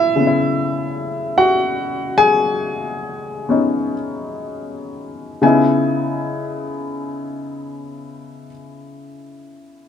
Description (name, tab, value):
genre	solo jazz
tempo	40-53 BPM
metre	4/4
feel	swing 66% on 8ths, rubato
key	C# minor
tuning	A4 = 445 Hz
part	warm baby grand piano	solo	0.0-9.9 s	C#3 to G#5	-17 LUFS	left 2 dB	none
room	light reverb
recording	close, detailed microphones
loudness	-16 LUFS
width	side -8 dB against mid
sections	0.0-5.4 A section; 5.4-9.9 B section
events	slowing down 0.0-5.4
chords	0.0 C#m9